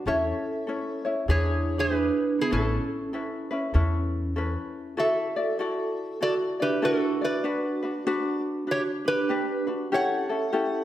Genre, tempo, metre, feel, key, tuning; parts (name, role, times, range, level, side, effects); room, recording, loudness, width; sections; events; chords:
Hawaiian; 97 BPM; 4/4; swing 63% on 8ths; A major, D major from 5.0 s; A4 = 440 Hz
metal-body resonator slide guitar; melody; 0.0-10.8 s; E4 to F#5; -28 LUFS; equal
ukulele; accompaniment; 0.0-10.8 s; C#4 to D5; -29 LUFS; left 2 dB
vibraphone with medium mallets; second line; 0.1-10.8 s; B3 to A4; -31 LUFS; right 5 dB
upright bass; bass; 0.1-4.5 s; A1 to E2; -26 LUFS; equal
wet recital hall reverb, RT60 1.5 s; -24 LUFS; side -12 dB against mid
0.0-5.0 A section; 5.0-10.8 B section
0.1 A/E; 1.3 E7; 2.5 Aadd9; 5.0 Dadd9; 7.4 Gmaj7; 9.9 A7